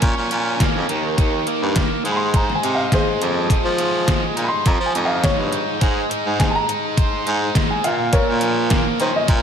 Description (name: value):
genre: indie rock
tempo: 104 BPM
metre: 4/4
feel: straight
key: Ab major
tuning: A4 = 442 Hz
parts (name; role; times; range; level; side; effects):
- warm upright piano; melody; 0.0-9.4 s; Gb4 to C6; -23 LUFS; equal; slapback echo, analog delay
- biting overdriven guitar; riff; 0.0-9.4 s; Bb2 to Db5; -22 LUFS; right 1 dB; slapback echo
- growling baritone saxophone; bass; 0.0-9.4 s; Eb2 to F3; -22 LUFS; equal; none
- detuned 8-bit digital drum machine; drums; 0.0-9.4 s; hi-hat, kick drum, snare drum; -20 LUFS; equal; overdrive
room: moderate recital hall reverb, RT60 1.4 s, digital ambience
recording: big arena sound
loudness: -16 LUFS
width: side -8 dB against mid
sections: 0.0-9.4 A section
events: upright piano solo 0.0-9.4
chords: 0.0 Bbm; 0.9 Eb; 2.1 Ab; 3.2 Fm7; 4.7 Dbadd9/F; 5.8 Ab; 7.8 Bbm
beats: 0.02 0.60 | 1.18 1.76 2.34 2.92 | 3.50 4.08 4.66 5.23 | 5.81 6.39 6.97 7.55 | 8.12 8.70 9.28